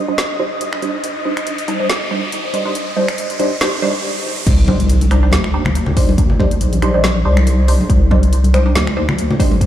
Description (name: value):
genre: deep dubstep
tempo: 140 BPM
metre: 4/4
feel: swing 55% on 16ths, half-time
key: C minor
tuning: A4 = 440 Hz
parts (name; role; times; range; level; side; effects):
- filtered dub chord stab; stabs; 0.0-9.6 s; G3 to C5; -20 LUFS; right 1 dB; phaser, dub echo
- riser and impact; sound effects; 0.0-6.2 s; none; -24 LUFS; equal; none
- flickering grainy texture; texture; 0.0-4.0 s; Eb5; -26 LUFS; right 1 dB; built-in reverb
- deep house drum kit; drums; 0.2-9.7 s; crash cymbal, finger snaps, hi-hat, snare drum; -23 LUFS; equal; none
- deep soft wobble bass; bass; 4.5-9.7 s; Bb1 to D2; -14 LUFS; equal; chorus
- electronic kick drum; drums; 4.5-9.7 s; none; -14 LUFS; equal; none
- congas; percussion; 4.7-9.6 s; none; -21 LUFS; left 3 dB; dub echo
room: light reverb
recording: played on a big sound system in a bare room, large studio reverb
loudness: -13 LUFS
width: side -11 dB against mid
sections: 0.0-4.5 A section; 4.5-9.7 B section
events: build-up 0.0-4.5; riser 0.0-4.5; filter sweep on synth stab 0.0-4.5; stop 4.0-4.5; drop 4.5-9.7; impact 4.5-6.2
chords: 0.0 Cmadd9